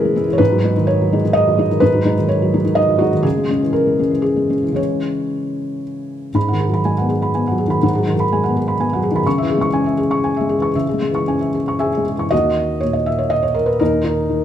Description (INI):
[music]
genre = neoclassical minimalist piano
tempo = 108-129 BPM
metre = 3/4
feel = rubato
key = C# dorian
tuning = A4 = 440 Hz
[part]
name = felt-muted upright piano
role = solo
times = 0.0-14.4 s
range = D#2 to C#6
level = -15 LUFS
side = equal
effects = none
[sound]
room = moderate recital hall reverb, RT60 1.7 s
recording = minimal, uncompressed stereo recording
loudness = -15 LUFS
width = side -10 dB against mid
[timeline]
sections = 0.0-6.4 A section; 6.4-12.3 B section; 12.3-14.4 C section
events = none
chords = 0.4 G#m7; 3.2 C#m; 6.4 G#m7; 9.3 C#m; 12.3 D#m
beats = | 0.39 0.87 1.34 | 1.81 2.29 2.76 | 3.25 3.74 4.23 | 4.78 5.31 5.83 | 6.36 6.86 7.35 | 7.83 8.31 8.79 | 9.26 9.73 10.22 | 10.74 11.27 11.80 | 12.31 12.82 13.31 | 13.81 14.30